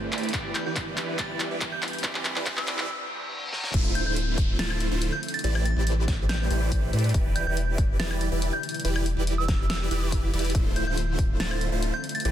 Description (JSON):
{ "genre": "future bass", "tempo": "141 BPM", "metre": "4/4", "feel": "half-time", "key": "unclear", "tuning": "A4 = 440 Hz", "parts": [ { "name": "electric guitar at the edge of break-up", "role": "accompaniment", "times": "0.0-2.9 s", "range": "E3 to D5", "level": "-37 LUFS", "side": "right 4 dB", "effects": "sidechain pumping, digital delay" }, { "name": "ethereal airy pad", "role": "sustained chords", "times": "0.0-12.3 s", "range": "E2 to B5", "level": "-39 LUFS", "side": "left 1 dB", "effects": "ensemble chorus, built-in reverb, sidechain pumping" }, { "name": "supersaw chords", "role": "riff", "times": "0.0-12.3 s", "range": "D3 to D5", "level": "-31 LUFS", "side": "right 1 dB", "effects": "phaser, sidechain pumping, low-pass filter" }, { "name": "riser, reverse cymbal and downlifter", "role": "sound effects", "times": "0.0-7.1 s", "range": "none", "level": "-37 LUFS", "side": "equal", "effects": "none" }, { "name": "big-room dance drum kit", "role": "drums", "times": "0.1-12.3 s", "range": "crash cymbal, handclaps, hi-hat, snare drum, woodblock", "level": "-32 LUFS", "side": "left 1 dB", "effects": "studio ambience" }, { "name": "electronic kick drum", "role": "drums", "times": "0.3-11.3 s", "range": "none", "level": "-26 LUFS", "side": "equal", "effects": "studio ambience" }, { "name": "soft synth bell", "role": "melody", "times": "0.5-12.3 s", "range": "E6 to A6", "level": "-34 LUFS", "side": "right 2 dB", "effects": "chorus, phaser, sidechain pumping, digital delay" }, { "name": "saturated sub bass", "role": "bass", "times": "3.7-12.3 s", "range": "D1 to A2", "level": "-27 LUFS", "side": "equal", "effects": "sidechain pumping" } ], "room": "little or no reverb", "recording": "dense, heavily limited modern master, high-pass filter", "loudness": "-24 LUFS", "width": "side -11 dB against mid", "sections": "0.0-3.7 A section; 3.7-12.3 B section", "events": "build-up 0.0-3.7; drum fill 0.0-2.9, 3.5; break 2.9-3.7; reverse cymbal 2.9-3.7; drop 3.7-12.3", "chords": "0.3 Em7; 2.0 Cmaj7/E; 3.7 Dm9; 5.2 Am11; 7.1 Em7; 8.8 Cmaj7/E; 10.5 Dm9", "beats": "| 0.34 0.76 1.19 1.61 | 2.04 2.46 2.89 3.31 | 3.74 4.17 4.59 5.02 | 5.44 5.87 6.29 6.72 | 7.14 7.57 8.00 8.42 | 8.85 9.27 9.70 10.12 | 10.55 10.97 11.40 11.82 | 12.25" }